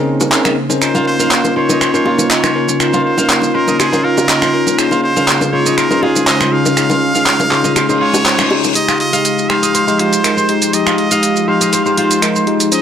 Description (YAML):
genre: afro house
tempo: 121 BPM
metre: 4/4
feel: straight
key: F minor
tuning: A4 = 444 Hz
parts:
  - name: ethereal airy pad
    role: sustained chords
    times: 0.0-12.8 s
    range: Db3 to C5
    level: -20 LUFS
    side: right 2 dB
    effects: ensemble chorus, built-in reverb
  - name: bell-like tine electric piano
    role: stabs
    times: 0.0-12.8 s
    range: Ab3 to Eb5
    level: -16 LUFS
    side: moving between left 6 dB and right 1 dB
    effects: auto-pan, low-pass filter, tape echo
  - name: deep house drum kit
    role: drums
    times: 0.2-12.8 s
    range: finger snaps, handclaps, hi-hat, shaker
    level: -16 LUFS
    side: right 2 dB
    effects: none
  - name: bongos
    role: percussion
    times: 0.2-8.7 s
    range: none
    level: -21 LUFS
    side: left 2 dB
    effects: none
  - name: trumpet with straight mute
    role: melody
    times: 0.8-12.8 s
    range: Ab4 to F5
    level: -19 LUFS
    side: right 1 dB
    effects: tape echo
  - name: kora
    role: arpeggios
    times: 0.9-12.8 s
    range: F4 to F5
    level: -19 LUFS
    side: equal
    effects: low-pass filter, tape echo
  - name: reverse cymbal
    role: sound effects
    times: 7.9-8.8 s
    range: none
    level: -21 LUFS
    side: left 4 dB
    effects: none
room: light reverb, digital ambience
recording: dry, gritty hardware recording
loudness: -11 LUFS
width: side -8 dB against mid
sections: 0.0-8.8 A section; 8.8-12.8 B section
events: reverse cymbal 7.9-8.8; build-up 8.8-12.8; filter sweep on kora 8.8-12.8; filter sweep on tine electric piano 8.8-12.8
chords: 0.0 Bbm11; 0.8 Db69; 4.8 Eb9sus4; 8.8 Fm9